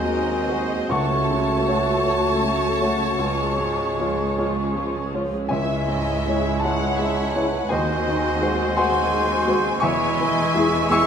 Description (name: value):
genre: classical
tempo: 46-58 BPM (dotted quarters)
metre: 12/8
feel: rubato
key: C# minor from 5.5 s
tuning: A4 = 439 Hz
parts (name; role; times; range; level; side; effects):
- clear baby grand piano; melody; 0.0-11.1 s; C#2 to E6; -24 LUFS; equal; none
- rich studio violin section; melody; 0.0-11.1 s; A#4 to F#5; -32 LUFS; left 3 dB; none
- clear oboe; second line; 0.0-11.1 s; B#4 to E5; -31 LUFS; right 2 dB; none
- mellow clarinet; second line; 0.0-11.1 s; E4 to F#4; -31 LUFS; equal; none
- mellow hollow silver concert flute; second line; 0.0-11.1 s; G#5 to E6; -28 LUFS; equal; none
- rich studio violin section; second line; 0.0-11.1 s; D#5 to C#6; -30 LUFS; left 2 dB; none
- warm bassoon; accompaniment; 0.0-11.1 s; G#3 to A3; -30 LUFS; right 3 dB; none
- warm studio viola section; accompaniment; 0.0-11.1 s; E#3 to A4; -32 LUFS; equal; none
- dark French horn section; sustained chords; 0.0-10.7 s; G#3 to F#4; -28 LUFS; left 3 dB; none
- rich studio cello section; bass; 0.0-11.1 s; C#2 to E2; -32 LUFS; right 4 dB; none
- warm studio double bass section; bass; 0.0-11.1 s; E1 to D#2; -31 LUFS; right 4 dB; none
- timpani; percussion; 0.9-6.6 s; C#3; -32 LUFS; equal; none
room: wet recital hall reverb, RT60 1.6 s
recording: minimal, uncompressed stereo recording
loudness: -19 LUFS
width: side -7 dB against mid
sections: 0.0-11.1 A section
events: none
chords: 0.0 G#7/D#; 0.9 F#m/C#; 3.2 C#; 5.5 C#m; 7.7 G#7/D#; 9.8 C#m/E